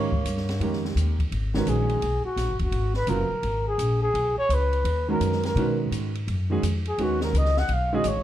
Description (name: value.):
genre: modal jazz.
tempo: 169 BPM.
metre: 4/4.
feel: swing 64% on 8ths.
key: G# dorian.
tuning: A4 = 440 Hz.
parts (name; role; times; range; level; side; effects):
breathy trumpet; melody; 0.0-8.2 s; F#4 to F#5; -26 LUFS; equal; plate reverb.
edgy tenor saxophone; second line; 0.0-1.0 s; A#3; -36 LUFS; right 4 dB; none.
clear concert grand piano; accompaniment; 0.0-8.0 s; C#3 to B4; -28 LUFS; right 3 dB; none.
upright bass; bass; 0.0-8.2 s; F#1 to B2; -26 LUFS; equal; none.
open jazz drum kit; drums; 0.1-8.1 s; hi-hat, kick drum, ride cymbal, snare drum; -34 LUFS; equal; none.
room: moderate large studio reverb, RT60 1.1 s.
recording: dark, warm production.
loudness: -22 LUFS.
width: side -12 dB against mid.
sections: 0.0-1.3 A section; 1.3-8.2 B section.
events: trumpet solo 1.3-8.2.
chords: 0.0 D#9sus4; 1.3 G#m11.